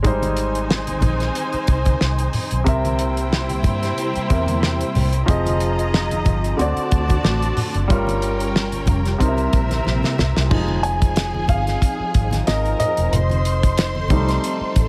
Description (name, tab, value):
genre	lush 1970s-style soul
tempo	92 BPM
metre	4/4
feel	swing 54% on 16ths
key	F minor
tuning	A4 = 441 Hz
part	muted studio string section	second line	0.0-14.9 s	C4 to C6	-29 LUFS	equal	none
part	clear grand piano	accompaniment	0.0-14.9 s	C3 to Ab5	-26 LUFS	equal	none
part	vintage muted fingered electric bass	bass	0.0-14.9 s	E1 to G2	-25 LUFS	equal	none
part	damped 70s drum kit	drums	0.0-14.9 s	crash cymbal, hi-hat, kick drum, snare drum	-23 LUFS	equal	none
part	congas	percussion	0.0-14.3 s	none	-31 LUFS	equal	none
part	phased string machine	sustained chords	0.1-14.9 s	C3 to Bb4	-32 LUFS	equal	ensemble chorus, phaser
room	little or no reverb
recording	none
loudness	-20 LUFS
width	mono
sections	0.0-10.5 A section; 10.5-14.9 B section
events	drum fill 9.9-10.5; grand piano solo 10.5-14.9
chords	0.0 Abmaj7; 2.7 C7; 5.3 Fm7; 6.6 D7; 7.9 Gm7b5; 9.2 C7; 10.5 Fm7; 13.1 F7